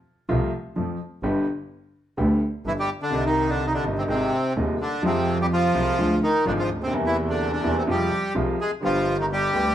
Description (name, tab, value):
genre	tango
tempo	127 BPM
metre	4/4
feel	rubato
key	unclear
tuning	A4 = 440 Hz
part	clear upright piano	accompaniment	0.3-9.7 s	Eb1 to G4	-26 LUFS	equal	none
part	clear double bass	bass	0.3-9.7 s	G1 to F2	-27 LUFS	right 1 dB	none
part	bandoneon	melody	2.7-9.7 s	C3 to Ab4	-23 LUFS	equal	none
room	moderate large studio reverb, RT60 0.9 s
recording	band playing live in one room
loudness	-21 LUFS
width	side -11 dB against mid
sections	0.0-3.1 A section; 3.1-9.7 B section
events	none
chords	0.0 F; 1.2 G; 3.1 Cm; 4.1 Ab; 5.0 Fm; 6.0 Ddim; 6.9 C7/E; 7.9 Fm; 8.8 G